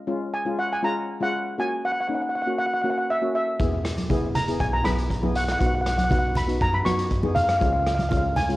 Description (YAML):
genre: calypso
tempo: 119 BPM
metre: 4/4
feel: straight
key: B major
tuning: A4 = 437 Hz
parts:
  - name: steel pan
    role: melody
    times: 0.0-8.6 s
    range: E5 to C#6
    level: -25 LUFS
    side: equal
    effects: cassette tape
  - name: steel pan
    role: accompaniment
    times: 0.1-8.6 s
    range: G#3 to G#4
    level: -28 LUFS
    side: left 1 dB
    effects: cassette tape
  - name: upright bass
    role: bass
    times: 3.6-8.6 s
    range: E1 to F#2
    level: -27 LUFS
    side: equal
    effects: none
  - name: raw garage drum kit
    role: drums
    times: 3.6-8.6 s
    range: hi-hat, kick drum, rim click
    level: -28 LUFS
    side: equal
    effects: cassette tape
  - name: congas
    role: percussion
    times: 4.0-8.5 s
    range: none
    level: -29 LUFS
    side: right 1 dB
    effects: none
room: moderate spring reverb, RT60 1.1 s, small room reverb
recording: home recording on cassette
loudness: -21 LUFS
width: side -17 dB against mid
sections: 0.0-8.6 A section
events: none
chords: 0.0 C#; 1.6 F#; 3.6 E; 5.6 B; 7.6 C#